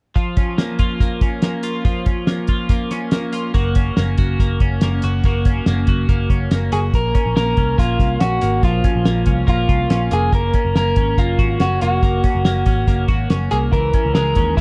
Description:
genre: jangly indie pop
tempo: 142 BPM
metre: 4/4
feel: straight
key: unclear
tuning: A4 = 442 Hz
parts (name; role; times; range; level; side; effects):
- twelve-string electric guitar; arpeggios; 0.2-14.6 s; Fb3 to Gb4; -26 LUFS; equal; phaser
- cloth-damped thuddy drum kit; drums; 0.2-14.6 s; hi-hat, kick drum, snare drum; -21 LUFS; equal; none
- vintage muted picked electric bass; bass; 3.5-14.6 s; F1 to Eb2; -22 LUFS; equal; none
- electric guitar through a small old amp; melody; 6.7-14.6 s; Fb4 to Bb4; -23 LUFS; equal; plate reverb
room: light reverb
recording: dark, warm production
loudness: -18 LUFS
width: mono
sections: 0.2-6.9 A section; 6.9-14.6 B section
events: none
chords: 0.2 Bbm; 3.5 Gb; 6.9 Bbm; 10.3 Gb; 13.7 Dbm

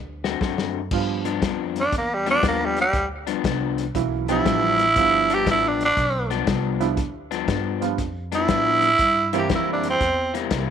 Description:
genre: electric blues shuffle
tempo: 119 BPM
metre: 4/4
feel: swing 67% on 8ths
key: G mixolydian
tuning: A4 = 441 Hz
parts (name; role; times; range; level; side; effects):
- upright bass; bass; 0.0-10.7 s; G1 to A2; -30 LUFS; right 1 dB; none
- electric guitar through a small old amp; riff; 0.2-10.7 s; G2 to F#4; -27 LUFS; left 13 dB; none
- warm soul drum kit; drums; 0.2-10.7 s; crash cymbal, hi-hat, kick drum, snare drum; -27 LUFS; left 3 dB; none
- warm upright piano; accompaniment; 0.9-10.0 s; E3 to G4; -26 LUFS; right 13 dB; none
- growling tenor saxophone; melody; 1.8-10.4 s; G3 to G4; -20 LUFS; right 2 dB; none
room: light reverb, studio ambience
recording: 1960s-style stereo with parts hard left and right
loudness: -19 LUFS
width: side -8 dB against mid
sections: 0.9-10.7 A section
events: drum fill 0.0-0.9; tenor saxophone solo 0.9-10.7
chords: 0.0 D7; 0.9 G7; 9.0 C7

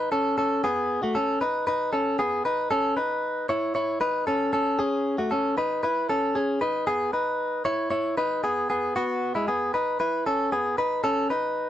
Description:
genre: indie pop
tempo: 115 BPM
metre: 4/4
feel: straight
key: unclear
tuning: A4 = 440 Hz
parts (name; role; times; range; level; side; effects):
- direct-recorded clean electric guitar; solo; 0.0-11.7 s; G#3 to C#5; -23 LUFS; equal; none
room: moderate studio reverb, RT60 0.5 s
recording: band playing live in one room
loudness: -23 LUFS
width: side -11 dB against mid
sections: 0.0-2.7 A section; 2.7-11.7 B section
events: none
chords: 0.0 Badd9; 6.6 Emaj7; 9.0 C#m7; 11.0 F#m (rootless)

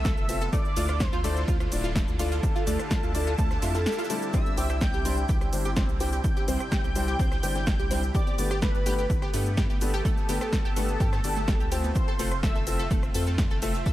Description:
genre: progressive house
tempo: 126 BPM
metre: 4/4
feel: straight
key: C major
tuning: A4 = 440 Hz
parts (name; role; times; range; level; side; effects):
- wide unison lead; melody; 0.0-13.9 s; A4 to G5; -34 LUFS; equal; ensemble chorus, sidechain pumping, digital delay
- airy dreamy lead; second line; 0.0-13.9 s; A5 to G6; -40 LUFS; equal; chorus, sidechain pumping, digital delay
- filtered supersaw swell; sustained chords; 0.0-13.9 s; C3 to A4; -38 LUFS; right 2 dB; sidechain pumping
- saturated sub bass; bass; 0.0-13.8 s; D1 to G2; -30 LUFS; equal; sidechain pumping
- loose indie drum kit; drums; 0.0-13.9 s; hi-hat, shaker, snare drum; -46 LUFS; right 1 dB; none
- tight sequenced synth; arpeggios; 0.1-13.9 s; A3 to A5; -35 LUFS; right 1 dB; chorus, cassette tape, sidechain pumping, digital delay
- big-room dance drum kit; drums; 0.1-13.9 s; hi-hat, ride cymbal, rim click, shaker, snare drum; -34 LUFS; equal; overdrive
- electronic kick drum; drums; 0.1-13.9 s; none; -27 LUFS; equal; overdrive
- warm grand piano; stabs; 0.3-13.7 s; G3 to E5; -35 LUFS; left 4 dB; sidechain pumping
room: digital ambience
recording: none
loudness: -24 LUFS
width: side -14 dB against mid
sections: 0.0-13.9 A section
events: none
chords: 0.0 F; 0.5 Dmadd9; 4.3 Cadd9; 8.1 Gadd9; 12.0 F

